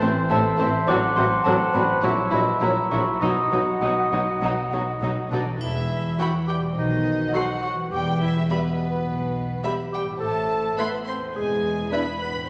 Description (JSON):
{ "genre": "cinematic, playful, whimsical film cue", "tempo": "104 BPM", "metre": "4/4", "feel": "straight", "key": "E minor", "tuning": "A4 = 439 Hz", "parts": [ { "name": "glockenspiel with rubber mallets", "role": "melody", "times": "0.0-5.3 s", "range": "A5 to A6", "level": "-27 LUFS", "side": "equal", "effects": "none" }, { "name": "warm chamber violin section", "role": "melody", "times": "0.0-12.5 s", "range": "E4 to C6", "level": "-34 LUFS", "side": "equal", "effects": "none" }, { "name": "warm chamber violin section", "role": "second line", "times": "0.0-12.0 s", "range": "C4 to C6", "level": "-34 LUFS", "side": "equal", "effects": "none" }, { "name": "warm oboe", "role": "second line", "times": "0.0-5.3 s", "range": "C5 to F#5", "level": "-30 LUFS", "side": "equal", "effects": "none" }, { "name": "warm chamber viola section", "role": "accompaniment", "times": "0.0-12.0 s", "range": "E3 to A4", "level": "-32 LUFS", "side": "equal", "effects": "none" }, { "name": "mellow French horn section", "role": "sustained chords", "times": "0.0-12.3 s", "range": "B2 to F#4", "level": "-34 LUFS", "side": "equal", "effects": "none" }, { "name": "concert harp", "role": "arpeggios", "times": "0.0-12.5 s", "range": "E2 to E6", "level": "-33 LUFS", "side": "equal", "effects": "none" }, { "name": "mellow tuba", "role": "bass", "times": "0.0-5.4 s", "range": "A1 to B1", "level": "-34 LUFS", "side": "equal", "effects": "none" }, { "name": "warm chamber cello section", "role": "bass", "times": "0.0-11.8 s", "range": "E2 to B2", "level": "-36 LUFS", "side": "equal", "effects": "none" }, { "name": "warm studio double bass section", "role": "bass", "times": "0.0-11.8 s", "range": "E1 to B1", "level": "-34 LUFS", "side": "equal", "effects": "none" }, { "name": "mellow hollow silver concert flute", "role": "second line", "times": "0.3-5.3 s", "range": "C5 to F#5", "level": "-34 LUFS", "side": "equal", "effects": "none" }, { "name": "warm clarinet", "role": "second line", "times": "0.3-12.3 s", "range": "B3 to D#5", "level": "-32 LUFS", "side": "equal", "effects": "none" }, { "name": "triangle", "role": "percussion", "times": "5.6-6.7 s", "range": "none", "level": "-46 LUFS", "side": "equal", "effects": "none" } ], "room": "wet scoring stage reverb, RT60 1.6 s", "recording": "none", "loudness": "-23 LUFS", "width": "mono", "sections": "0.0-5.6 A section; 5.6-12.5 B section", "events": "none", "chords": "0.0 Am; 0.9 F#dim/A; 2.0 F#7/A#; 3.2 B; 5.6 Em; 6.8 B7b9; 7.9 Em; 10.2 Am; 11.3 E7", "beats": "0.31 | 0.88 1.46 2.03 2.62 | 3.22 3.82 4.42 5.01 | 5.61 6.19 6.76 7.34 | 7.92 8.50 9.07 9.64 | 10.21 10.78 11.35 11.92 | 12.48" }